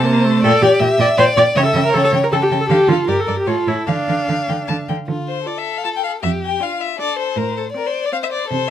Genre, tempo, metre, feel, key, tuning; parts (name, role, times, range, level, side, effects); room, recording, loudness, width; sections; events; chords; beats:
quick classical-period movement for string quartet; 158 BPM; 3/4; straight; D minor; A4 = 439 Hz
rich violin; melody; 0.0-8.7 s; A4 to A5; -23 LUFS; left 8 dB
warm violin; second line; 0.0-8.7 s; F4 to F5; -20 LUFS; left 3 dB
warm viola; accompaniment; 0.0-8.4 s; A3 to D5; -17 LUFS; right 1 dB
rich cello; bass; 0.0-8.7 s; F2 to D3; -20 LUFS; right 4 dB
moderate studio reverb, RT60 0.6 s; -15 LUFS; side -10 dB against mid
0.0-5.1 A section; 5.1-8.7 A section
0.4 Gm/Bb; 1.6 A7/C#; 2.7 Dm; 3.1 Gm; 3.5 A5; 3.9 Dm; 6.2 Dm/F; 7.4 Am
0.06 | 0.43 0.81 1.18 | 1.56 1.94 2.32 | 2.70 3.08 3.47 | 3.87 4.28 4.68 | 5.08 5.46 5.85 | 6.23 6.61 6.99 | 7.37 7.75 8.13 | 8.51